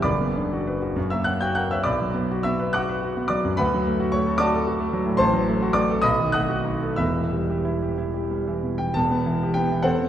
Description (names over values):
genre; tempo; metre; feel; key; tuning
classical, romantic character piece for solo piano; 58-77 BPM (dotted quarters); 6/8; rubato; B minor, E minor from 5.2 s; A4 = 445 Hz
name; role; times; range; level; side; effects
clear concert grand piano; solo; 0.0-10.1 s; E1 to G6; -21 LUFS; equal; none
room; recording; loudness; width
wet concert hall reverb, RT60 2.2 s; heard from further back in the room; -21 LUFS; side -10 dB against mid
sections
0.0-9.0 A section; 9.0-10.1 B section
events
none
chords
0.1 Bm/F#; 1.0 F#; 1.9 Bm; 3.6 D; 5.2 F#dim/A; 6.1 B7; 7.0 Em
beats
| 0.06 0.97 | 1.88 2.76 | 3.61 4.42 | 5.21 6.06 | 7.00 7.98 | 8.96 9.84